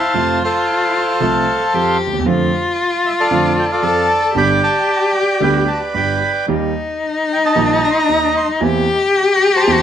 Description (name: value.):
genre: tango.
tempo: 114 BPM.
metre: 4/4.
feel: rubato.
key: unclear.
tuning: A4 = 441 Hz.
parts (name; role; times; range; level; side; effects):
bandoneon; melody; 0.0-9.8 s; A4 to C6; -16 LUFS; right 1 dB; none.
warm cello; second line; 0.0-9.8 s; Eb4 to A4; -17 LUFS; left 3 dB; analog delay.
warm concert grand piano; accompaniment; 0.1-9.8 s; G1 to G4; -18 LUFS; right 3 dB; none.
room: moderate studio reverb, RT60 0.6 s.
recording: none.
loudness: -13 LUFS.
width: side -9 dB against mid.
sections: 0.0-9.8 A section.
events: none.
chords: 0.2 F; 2.3 Dm/F; 4.4 G; 6.5 Eb; 8.6 C7/E.